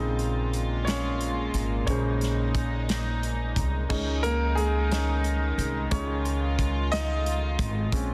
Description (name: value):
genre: six-eight pop ballad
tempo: 60 BPM (dotted quarters)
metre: 6/8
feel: straight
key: unclear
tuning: A4 = 443 Hz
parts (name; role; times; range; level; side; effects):
- clear baby grand piano; accompaniment; 0.0-8.1 s; Db3 to Eb5; -33 LUFS; equal; none
- warm studio string section; sustained chords; 0.0-8.1 s; Bb2 to F4; -36 LUFS; equal; none
- upright bass; bass; 0.0-8.1 s; Ab1 to Db2; -30 LUFS; equal; none
- loose indie drum kit; drums; 0.2-8.1 s; crash cymbal, hi-hat, kick drum, snare drum; -34 LUFS; equal; none
room: light reverb, studio ambience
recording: dense, heavily limited modern master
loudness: -27 LUFS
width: mono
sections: 0.0-3.9 A section; 3.9-8.1 B section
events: grand piano solo 0.0-3.9, 3.9-8.1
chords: 0.0 Bbm7